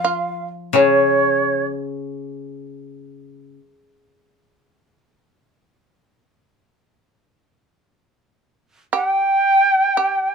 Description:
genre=japanese traditional, Japanese chamber music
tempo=free time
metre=none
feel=none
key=unclear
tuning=A4 = 440 Hz
part: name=shakuhachi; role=melody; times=0.0-1.7, 8.9-10.3 s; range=Db5 to G5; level=-17 LUFS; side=right 2 dB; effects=none
part: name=shamisen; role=second line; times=0.0-1.7, 8.9-10.3 s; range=Db4 to G4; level=-24 LUFS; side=right 5 dB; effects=none
part: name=koto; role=accompaniment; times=0.0-3.6 s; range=Db3 to F3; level=-20 LUFS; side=left 3 dB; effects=none
room=moderate studio ambience, RT60 0.5 s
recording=minimal, uncompressed stereo recording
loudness=-16 LUFS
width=side -5 dB against mid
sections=0.0-10.3 A section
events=none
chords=none

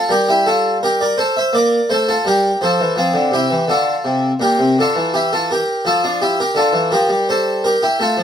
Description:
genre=classical, baroque-style suite movement for harpsichord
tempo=84 BPM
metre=4/4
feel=rubato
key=F major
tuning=A4 = 441 Hz
part: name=harpsichord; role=solo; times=0.0-8.2 s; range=Bb2 to E5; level=-14 LUFS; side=equal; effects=none
room=light reverb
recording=none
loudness=-14 LUFS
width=side -8 dB against mid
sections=0.0-8.2 A section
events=none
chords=0.1 C7/G; 3.0 F; 4.4 C7/Bb; 5.8 F

